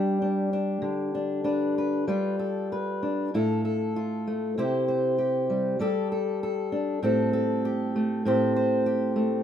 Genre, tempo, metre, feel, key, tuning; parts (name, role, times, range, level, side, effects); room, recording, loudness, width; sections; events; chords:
folk, solo fingerstyle acoustic guitar; 98 BPM; 4/4; straight; G mixolydian; A4 = 439 Hz
fingerpicked steel-string acoustic guitar; solo; 0.0-9.4 s; A2 to C5; -24 LUFS; equal
wet studio reverb, RT60 0.7 s; band playing live in one room; -24 LUFS; side -9 dB against mid
0.0-2.1 A section; 2.1-9.4 B section
0.0 G; 2.1 G7; 3.3 Fmaj7/A; 4.6 C; 5.8 Gsus2; 7.0 Am7